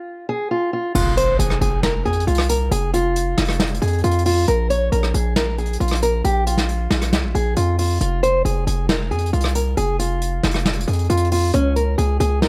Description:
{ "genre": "hip hop, trap", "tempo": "136 BPM", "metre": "4/4", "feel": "half-time", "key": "F minor", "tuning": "A4 = 438 Hz", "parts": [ { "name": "fingerpicked old ladder-braced acoustic guitar", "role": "melody", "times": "0.0-12.5 s", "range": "Db4 to Db5", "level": "-24 LUFS", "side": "equal", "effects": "low-pass filter" }, { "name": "hard-hitting 808-style bass", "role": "bass", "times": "0.9-12.5 s", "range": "F1 to F2", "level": "-22 LUFS", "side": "equal", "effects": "none" }, { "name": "impact", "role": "sound effects", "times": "0.9-2.7 s", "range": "none", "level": "-31 LUFS", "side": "equal", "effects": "none" }, { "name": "soft brush drum kit", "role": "drums", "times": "1.0-12.5 s", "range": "crash cymbal, hi-hat, rim click, snare drum", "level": "-26 LUFS", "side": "equal", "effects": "none" } ], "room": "light reverb, small room ambience", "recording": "none", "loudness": "-19 LUFS", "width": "mono", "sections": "0.9-12.5 A section", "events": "impact 0.9-2.7", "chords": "0.0 N.C.; 0.9 F5; 4.5 Bb5; 8.0 F5; 11.5 Db5" }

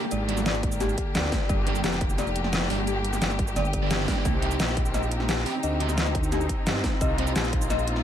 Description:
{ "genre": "dark technical drum and bass", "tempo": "174 BPM", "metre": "4/4", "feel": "straight", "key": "G phrygian", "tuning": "A4 = 441 Hz", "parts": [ { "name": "warm symphonic string section", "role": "sustained chords", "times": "0.0-8.0 s", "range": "D3 to G4", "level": "-32 LUFS", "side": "equal", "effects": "sidechain pumping" }, { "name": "dark detuned synth bell", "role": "arpeggios", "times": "0.1-7.7 s", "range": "G4 to Eb5", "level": "-33 LUFS", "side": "left 5 dB", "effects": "chorus, phaser, sidechain pumping, ping-pong delay" }, { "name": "metallic wobble bass", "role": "bass", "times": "0.1-8.0 s", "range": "F1 to G2", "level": "-28 LUFS", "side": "equal", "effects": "distortion, chorus, overdrive, sidechain pumping" }, { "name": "dubstep drum kit", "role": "drums", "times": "0.1-8.0 s", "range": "cabasa, hi-hat, snare drum", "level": "-29 LUFS", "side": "equal", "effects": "overdrive" }, { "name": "thick fuzz guitar", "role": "stabs", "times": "0.3-7.3 s", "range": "G3 to G4", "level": "-33 LUFS", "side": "right 3 dB", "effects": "distortion, ping-pong delay" }, { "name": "electronic kick drum", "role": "drums", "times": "0.6-7.6 s", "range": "none", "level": "-28 LUFS", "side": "equal", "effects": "overdrive" }, { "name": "growling FM bass", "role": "bass", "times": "3.6-4.1 s", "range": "G1", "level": "-28 LUFS", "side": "equal", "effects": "none" } ], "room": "little or no reverb", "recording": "none", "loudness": "-23 LUFS", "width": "side -10 dB against mid", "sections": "0.0-8.0 A section", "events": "none", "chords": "0.0 Gm; 4.3 Cm" }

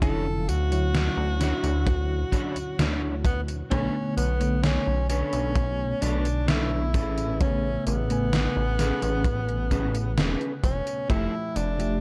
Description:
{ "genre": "vaporwave", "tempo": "65 BPM", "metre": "4/4", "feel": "straight", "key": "A major", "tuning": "A4 = 440 Hz", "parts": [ { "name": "clear tenor saxophone", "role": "melody", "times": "0.0-12.0 s", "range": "B3 to A4", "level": "-33 LUFS", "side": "equal", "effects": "tape echo" }, { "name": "mellow FM electric piano", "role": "accompaniment", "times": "0.0-12.0 s", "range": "C#3 to G#5", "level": "-34 LUFS", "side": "equal", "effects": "tremolo, subtle chorus" }, { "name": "electric guitar at the edge of break-up", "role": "riff", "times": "0.0-11.8 s", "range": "C#4 to C#5", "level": "-36 LUFS", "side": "equal", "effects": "ensemble chorus, tape echo" }, { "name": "chorused synth bass", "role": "bass", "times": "0.0-12.0 s", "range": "E1 to D2", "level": "-29 LUFS", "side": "equal", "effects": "none" }, { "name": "gated 80s digital drum machine", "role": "drums", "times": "0.0-12.0 s", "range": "hi-hat, snare drum, tambourine", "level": "-32 LUFS", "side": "equal", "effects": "gated reverb, gated reverb snare, overdrive" }, { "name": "kick drum", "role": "drums", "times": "0.0-11.3 s", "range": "none", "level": "-30 LUFS", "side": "equal", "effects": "none" } ], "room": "light reverb, small room ambience", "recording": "dark, warm production", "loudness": "-26 LUFS", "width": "mono", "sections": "0.0-12.0 A section", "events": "none", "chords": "0.0 Dmaj9; 3.7 Bm9; 6.9 Amaj9; 11.1 Fmaj9" }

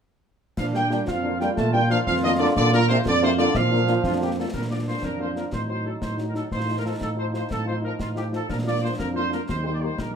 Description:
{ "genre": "military-style march for wind band", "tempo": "121 BPM (dotted quarters)", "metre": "6/8", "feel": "straight", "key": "Bb major", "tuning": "A4 = 441 Hz", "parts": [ { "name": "dark trumpet section", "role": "melody", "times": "0.6-10.2 s", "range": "F4 to A5", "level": "-27 LUFS", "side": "right 1 dB", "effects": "none" }, { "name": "warm euphonium", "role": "second line", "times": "0.6-4.5 s", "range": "Bb2 to A3", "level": "-26 LUFS", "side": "right 3 dB", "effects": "none" }, { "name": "clear trombone section", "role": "sustained chords", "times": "0.6-10.2 s", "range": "F3 to F4", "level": "-31 LUFS", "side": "right 1 dB", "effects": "none" }, { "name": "dark tuba", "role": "bass", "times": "0.6-10.2 s", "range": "Bb1 to Bb2", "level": "-26 LUFS", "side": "right 1 dB", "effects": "none" }, { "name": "concert snare drum, clash cymbals and concert bass drum", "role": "drums", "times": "0.6-10.1 s", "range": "none", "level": "-33 LUFS", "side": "left 2 dB", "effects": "none" }, { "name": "dark French horn section", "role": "accompaniment", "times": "0.7-9.9 s", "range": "F3 to G4", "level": "-30 LUFS", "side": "left 4 dB", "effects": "none" } ], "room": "moderate large studio reverb, RT60 0.8 s", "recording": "minimal, uncompressed stereo recording", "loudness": "-21 LUFS", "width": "side -7 dB against mid", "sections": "0.6-4.5 A section; 4.5-10.2 B section", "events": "none", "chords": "0.6 Bb; 5.5 Adim7; 6.5 F7/A; 8.5 Bb; 9.5 Eb" }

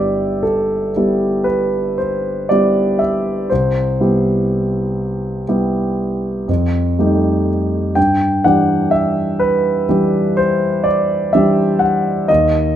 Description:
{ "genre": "classical, impressionist solo piano", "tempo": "38-42 BPM (dotted quarters)", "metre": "9/8", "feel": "rubato", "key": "G major", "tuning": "A4 = 440 Hz", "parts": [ { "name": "warm concert grand piano", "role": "solo", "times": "0.0-12.8 s", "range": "G1 to G5", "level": "-14 LUFS", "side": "equal", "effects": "none" } ], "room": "moderate stone room reverb, RT60 1.2 s", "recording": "none", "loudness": "-14 LUFS", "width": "side -10 dB against mid", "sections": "0.0-12.8 A section", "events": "none", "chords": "0.0 G69; 3.5 Cmaj7; 6.5 F9; 8.0 G6" }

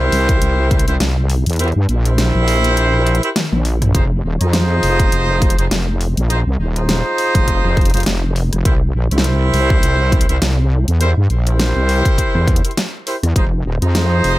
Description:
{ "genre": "glitch hop", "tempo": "102 BPM", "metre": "4/4", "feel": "swing 57% on 16ths", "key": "unclear", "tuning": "A4 = 440 Hz", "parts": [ { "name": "warm horn section", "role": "stabs", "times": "0.0-14.4 s", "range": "Eb4 to C5", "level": "-19 LUFS", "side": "right 1 dB", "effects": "sidechain pumping, tape echo" }, { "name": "wobble bass", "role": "bass", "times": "0.0-14.4 s", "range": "Eb1 to G2", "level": "-16 LUFS", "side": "equal", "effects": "chorus, tube saturation" }, { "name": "dubstep drum kit", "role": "drums", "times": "0.1-14.4 s", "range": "hi-hat, rim click, snare drum, toms", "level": "-21 LUFS", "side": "equal", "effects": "none" }, { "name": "electronic kick drum", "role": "drums", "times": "0.3-13.5 s", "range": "none", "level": "-15 LUFS", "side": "equal", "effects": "none" } ], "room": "little or no reverb", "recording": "none", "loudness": "-13 LUFS", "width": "side -17 dB against mid", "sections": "0.0-14.4 A section", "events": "kick drops out 1.6-3.9; drum fill 3.4-3.9", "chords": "0.0 C7; 3.9 Fm7; 8.7 C7; 13.4 Fm7" }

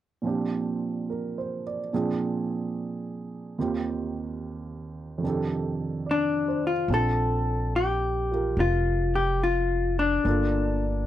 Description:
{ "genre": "jazz ballad", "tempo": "72 BPM", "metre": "4/4", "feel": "swing 68% on 8ths", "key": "Bb major", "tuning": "A4 = 440 Hz", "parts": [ { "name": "warm grand piano", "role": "accompaniment", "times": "0.2-11.1 s", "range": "Eb2 to D5", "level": "-29 LUFS", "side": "right 4 dB", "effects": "none" }, { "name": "vintage hollow-body jazz guitar", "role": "melody", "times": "6.1-11.1 s", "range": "D4 to A4", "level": "-25 LUFS", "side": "left 3 dB", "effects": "none" }, { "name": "upright bass", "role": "bass", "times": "6.9-11.1 s", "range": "F1 to Bb1", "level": "-27 LUFS", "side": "equal", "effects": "none" } ], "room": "little or no reverb", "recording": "dry, close 1970s-style studio recording", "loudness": "-24 LUFS", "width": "side -12 dB against mid", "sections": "0.2-6.9 A section; 6.9-11.1 B section", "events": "none", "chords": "0.2 Bb6; 1.9 Bb9; 3.6 Eb6; 5.2 F13; 6.9 Bbmaj9; 10.2 Gm7" }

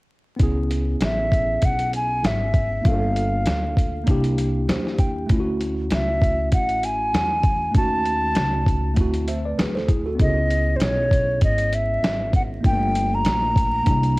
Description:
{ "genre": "hip hop, jazz-hop", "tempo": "98 BPM", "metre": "4/4", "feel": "swing 58% on 16ths", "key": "unclear", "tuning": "A4 = 440 Hz", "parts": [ { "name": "tine electric piano", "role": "accompaniment", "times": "0.4-14.2 s", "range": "G3 to G5", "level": "-27 LUFS", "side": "equal", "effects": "medium stereo tremolo" }, { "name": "upright bass", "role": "bass", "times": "0.4-14.2 s", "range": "G1 to E2", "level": "-25 LUFS", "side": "equal", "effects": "none" }, { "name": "dusty soul sampler-style drum kit", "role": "drums", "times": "0.4-14.2 s", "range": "hi-hat, kick drum, snare drum", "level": "-21 LUFS", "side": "equal", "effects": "vintage 12-bit sampler grit, cassette tape" }, { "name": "mellow hollow jazz flute", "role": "melody", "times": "1.0-14.2 s", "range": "B#4 to Bb5", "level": "-23 LUFS", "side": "equal", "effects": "cassette tape, analog delay" } ], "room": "light reverb", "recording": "home recording on cassette, vinyl crackle", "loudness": "-18 LUFS", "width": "side -22 dB against mid", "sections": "0.4-10.2 A section; 10.2-14.2 B section", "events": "tine electric piano fill 4.4-5.3", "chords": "0.4 C#m7; 2.8 Gm7; 4.1 C9; 5.3 Dmaj9; 7.7 D#m7b5; 9.0 D9; 10.2 C#m7; 12.6 Gm7" }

